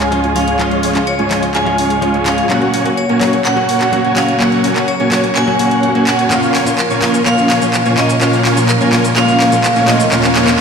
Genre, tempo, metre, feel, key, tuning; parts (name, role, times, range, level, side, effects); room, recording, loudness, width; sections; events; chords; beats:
EDM, festival progressive house; 126 BPM; 4/4; straight; A4 = 443 Hz
vibraphone with hard mallets; melody; 0.0-10.1 s; Bb4 to Ab5; -18 LUFS; right 1 dB; ping-pong delay
dark studio string section; sustained chords; 0.0-10.6 s; Db2 to F5; -20 LUFS; equal; low-pass filter
dense compressed supersaw; riff; 0.0-10.5 s; Ab3 to Ab5; -15 LUFS; right 1 dB; low-pass filter
house drum kit; drums; 0.0-10.6 s; handclaps, hi-hat, shaker; -19 LUFS; equal; overdrive
direct-recorded clean electric guitar; accompaniment; 0.1-10.6 s; Bb2 to Gb4; -20 LUFS; left 3 dB
riser; sound effects; 8.1-10.6 s; -23 LUFS; right 2 dB
wet lush hall reverb, RT60 2.1 s; played on a big sound system in a bare room, large studio reverb; -11 LUFS; side -6 dB against mid
0.0-10.6 A section
build-up 0.0-10.6; drum fill 0.0-10.6
0.0 Db; 2.5 Gb; 6.3 Bbm
0.12 | 0.59 1.07 1.55 2.02 | 2.50 2.98 3.45 3.93 | 4.40 4.88 5.36 5.83 | 6.31 6.79 7.26 7.74 | 8.21 8.69 9.17 9.64 | 10.12 10.59